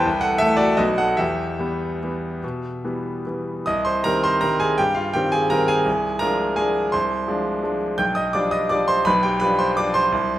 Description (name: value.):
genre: classical, piano waltz.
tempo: 139-178 BPM.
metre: 3/4.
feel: rubato.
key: E minor, C minor from 3.7 s.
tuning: A4 = 440 Hz.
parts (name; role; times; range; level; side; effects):
bright grand piano; solo; 0.0-10.4 s; B1 to G6; -18 LUFS; equal; none.
room: moderate recital hall reverb, RT60 1.6 s.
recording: none.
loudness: -19 LUFS.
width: side -13 dB against mid.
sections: 0.0-3.7 A section; 3.7-10.4 B section.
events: none.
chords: 0.1 Am/C; 0.8 B; 1.2 Em; 3.7 Cm; 5.9 Dm7b5/C; 8.0 G7/B.